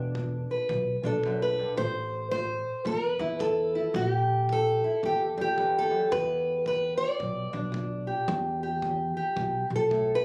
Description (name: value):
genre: acoustic country blues, solo or duo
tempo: 111 BPM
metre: 4/4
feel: swing 62% on 8ths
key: E minor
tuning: A4 = 438 Hz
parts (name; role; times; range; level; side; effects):
- fingerpicked steel-string acoustic guitar; melody; 0.0-10.2 s; E2 to D5; -29 LUFS; equal; none
- upright bass; bass; 0.0-10.2 s; E1 to E2; -36 LUFS; equal; none
- kick drum; drums; 0.2-10.1 s; none; -47 LUFS; equal; none
room: moderate booth ambience, RT60 0.2 s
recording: recorded on a phone in the room, studio ambience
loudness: -28 LUFS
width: mono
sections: 0.0-10.2 A section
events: none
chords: 0.0 E7(no3); 1.8 Amadd9; 4.0 Gm69/Bb; 6.1 Em7